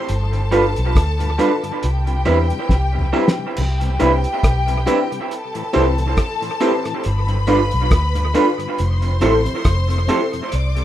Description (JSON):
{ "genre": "lovers rock reggae", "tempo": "69 BPM", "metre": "4/4", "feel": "swing 57% on 16ths", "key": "C major", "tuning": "A4 = 443 Hz", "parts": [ { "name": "warm studio string section", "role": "second line", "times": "0.0-10.8 s", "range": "G4 to D6", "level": "-26 LUFS", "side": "left 2 dB", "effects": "dub echo, plate reverb" }, { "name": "vintage muted fingered electric bass", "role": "bass", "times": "0.1-10.8 s", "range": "F1 to E2", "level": "-18 LUFS", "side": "equal", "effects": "none" }, { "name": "cloth-damped thuddy drum kit", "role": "drums", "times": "0.1-10.8 s", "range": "crash cymbal, hi-hat, kick drum, rim click, snare drum, toms", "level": "-21 LUFS", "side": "equal", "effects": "dub echo" }, { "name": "mellow tonewheel organ", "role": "accompaniment", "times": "0.3-10.8 s", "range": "F2 to G4", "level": "-30 LUFS", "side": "left 5 dB", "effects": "slow rotary speaker, dub echo" }, { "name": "FM electric piano with soft pad layer", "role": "accompaniment", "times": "0.5-10.2 s", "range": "C4 to B4", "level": "-22 LUFS", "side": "left 4 dB", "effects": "chorus, plate reverb" }, { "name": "electric guitar through a small old amp", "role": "stabs", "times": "0.5-10.2 s", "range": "G3 to C5", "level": "-21 LUFS", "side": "right 4 dB", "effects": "dub echo, plate reverb" } ], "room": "moderate studio ambience, RT60 0.5 s", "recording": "rough home demo mix", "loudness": "-16 LUFS", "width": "side -12 dB against mid", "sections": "0.0-3.6 A section; 3.6-10.8 A section", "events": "drum fill 2.7-3.6", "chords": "0.1 G7; 1.8 Cmaj7; 5.3 Am7; 7.0 G7; 8.8 Fmaj7" }